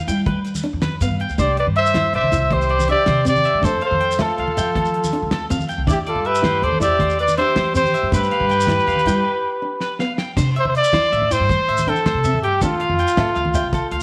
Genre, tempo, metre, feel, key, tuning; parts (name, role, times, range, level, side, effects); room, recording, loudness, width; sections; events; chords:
highlife guitar band; 107 BPM (dotted quarters); 12/8; straight; C major; A4 = 440 Hz
nylon-string guitar; accompaniment; 0.1-13.8 s; B3 to E5; -31 LUFS; equal
electric guitar at the edge of break-up; arpeggios; 0.1-14.0 s; A4 to G5; -29 LUFS; equal
upright bass; bass; 0.1-14.0 s; C2 to G3; -26 LUFS; equal
damped 70s drum kit; drums; 0.1-14.0 s; crash cymbal, hi-hat, kick drum, snare drum; -29 LUFS; equal
shekere; percussion; 0.1-14.0 s; -30 LUFS; equal
congas; percussion; 0.3-13.8 s; -29 LUFS; equal
breathy trumpet; melody; 1.4-14.0 s; F4 to E5; -21 LUFS; equal
bright alto saxophone; second line; 1.4-10.0 s; E4 to C5; -30 LUFS; equal
moderate echo chamber reverb, RT60 1.3 s, small room ambience; -19 LUFS; mono
0.0-10.4 A section; 10.4-14.0 B section
break 9.2-10.4; drum fill 9.8-10.4
0.0 G7; 1.4 Cadd9; 3.6 Fadd9; 5.9 Cadd9/E; 8.1 G7; 10.4 C; 12.6 Fadd9